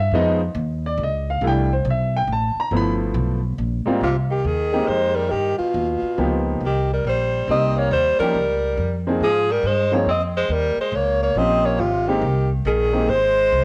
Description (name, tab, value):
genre	jazz, small-group swing and bop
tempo	139 BPM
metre	3/4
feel	swing 64% on 8ths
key	C major, Ab major from 4.0 s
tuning	A4 = 442 Hz
part	warm grand piano	accompaniment	0.0-13.1 s	Ab2 to B5	-25 LUFS	equal	none
part	upright bass	bass	0.0-13.6 s	G1 to Ab2	-26 LUFS	equal	transformer saturation
part	warm alto saxophone	melody	4.0-13.6 s	F4 to Eb5	-22 LUFS	equal	cassette tape
part	clear tenor saxophone	second line	4.0-13.6 s	B2 to C4	-30 LUFS	equal	none
room	moderate spring reverb, RT60 1.2 s, small room reverb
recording	home recording on cassette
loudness	-20 LUFS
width	mono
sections	0.0-4.0 A section; 4.0-13.6 B section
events	none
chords	0.1 Db9; 1.4 C69; 2.7 G13; 3.6 Abmaj13/Bb; 4.0 Abmaj9; 5.3 G7alt; 6.6 Cm7; 7.9 Eb9; 9.2 Ab6; 10.5 Eb13; 11.8 Abmaj9